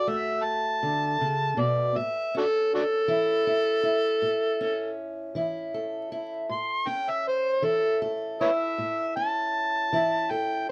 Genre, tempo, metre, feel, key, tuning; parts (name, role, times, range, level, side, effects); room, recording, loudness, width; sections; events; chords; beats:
acoustic country blues, solo or duo; 53 BPM (dotted quarters); 12/8; straight; A major; A4 = 440 Hz
overdriven harmonica; melody; 0.0-10.7 s; D4 to C6; -27 LUFS; equal
fingerpicked steel-string acoustic guitar; accompaniment; 0.0-10.7 s; A2 to A4; -33 LUFS; equal
light reverb; dark, warm production, vinyl crackle; -27 LUFS; mono
0.0-10.7 A section
0.0 D; 2.0 A
0.84 | 1.97 3.10 4.24 5.37 | 6.51 7.64 8.78 9.91